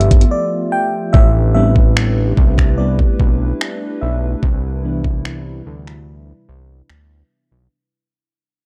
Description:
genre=contemporary R&B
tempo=73 BPM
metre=4/4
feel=straight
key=A minor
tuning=A4 = 440 Hz
part: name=FM electric piano with tremolo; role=accompaniment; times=0.0-7.7 s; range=E3 to G5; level=-23 LUFS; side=equal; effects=low-pass filter
part: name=hollow soft pad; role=sustained chords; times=0.0-7.7 s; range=C3 to B4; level=-27 LUFS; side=equal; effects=chorus, low-pass filter
part: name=fat analog bass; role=bass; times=0.0-7.7 s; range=G1 to D2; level=-20 LUFS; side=equal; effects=none
part: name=smooth R&B drum kit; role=drums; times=0.0-7.1 s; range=finger snaps, hi-hat, kick drum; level=-15 LUFS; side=equal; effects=vintage 12-bit sampler grit
room=little or no reverb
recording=dark, warm production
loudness=-15 LUFS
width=mono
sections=0.0-1.1 A section; 1.1-7.7 B section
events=FM electric piano solo 0.0-1.1, 1.1-7.7; break 0.3-1.1, 6.1-7.7; fade-out 1.1-7.7; filter sweep 1.1-7.7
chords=0.0 G13; 1.1 Am11; 4.4 Cmaj9

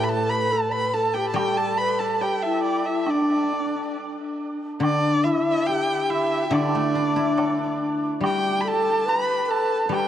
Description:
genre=chinese traditional, Chinese chamber ensemble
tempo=70 BPM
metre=4/4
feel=rubato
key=D zhi mode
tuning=A4 = 442 Hz
part: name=clear erhu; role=melody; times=0.0-10.1 s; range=D5 to B5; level=-25 LUFS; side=right 1 dB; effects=diffuse ambient delay
part: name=bright low xiao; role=second line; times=0.0-10.1 s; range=D4 to D5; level=-27 LUFS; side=left 4 dB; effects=none
part: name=hammered dulcimer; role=second line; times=0.0-10.1 s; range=D4 to B4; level=-27 LUFS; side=right 3 dB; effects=diffuse ambient delay
part: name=guzheng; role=accompaniment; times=0.0-10.1 s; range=A2 to A4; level=-27 LUFS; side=left 2 dB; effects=none
part: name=woodblock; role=percussion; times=1.4-10.1 s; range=none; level=-34 LUFS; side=right 1 dB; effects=none
room=wet plate reverb, RT60 2.6 s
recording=dreamy mix soaked in reverb, cassette tape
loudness=-20 LUFS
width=side -10 dB against mid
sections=0.0-4.8 A section; 4.8-10.1 B section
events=none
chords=none

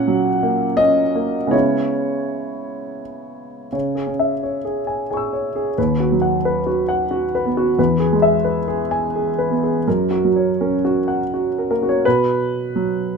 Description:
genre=neoclassical minimalist piano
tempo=79-91 BPM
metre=3/4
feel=rubato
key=C# dorian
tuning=A4 = 440 Hz
part: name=warm concert grand piano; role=solo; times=0.0-13.2 s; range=D#2 to E6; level=-17 LUFS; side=equal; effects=none
room=moderate small room reverb, RT60 0.5 s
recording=minimal, uncompressed stereo recording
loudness=-17 LUFS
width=side -5 dB against mid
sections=0.0-3.7 A section; 3.7-12.0 B section; 12.0-13.2 C section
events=none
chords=0.0 F#/A#; 1.5 C#m7; 3.7 C#m; 5.8 B/D#; 7.8 E; 9.9 F#; 12.0 B5

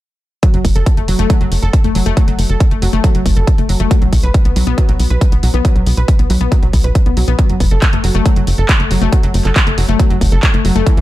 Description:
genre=uplifting trance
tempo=138 BPM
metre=4/4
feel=straight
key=F# minor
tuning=A4 = 440 Hz
part: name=analog pluck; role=arpeggios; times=0.4-11.0 s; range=E3 to B4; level=-19 LUFS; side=left 2 dB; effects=chorus, sidechain pumping, digital delay
part: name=big-room dance drum kit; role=drums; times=0.4-11.0 s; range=handclaps, hi-hat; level=-21 LUFS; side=right 1 dB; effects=studio ambience
part: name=electronic kick drum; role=drums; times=0.4-11.0 s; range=none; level=-12 LUFS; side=equal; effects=studio ambience
part: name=tight sequencer bass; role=bass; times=0.5-11.0 s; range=F#1 to C#2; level=-14 LUFS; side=equal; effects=sidechain pumping
room=digital ambience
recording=dark, warm production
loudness=-10 LUFS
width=side -15 dB against mid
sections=0.4-11.0 A section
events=none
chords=0.4 F#m; 3.9 B5; 7.4 F#m

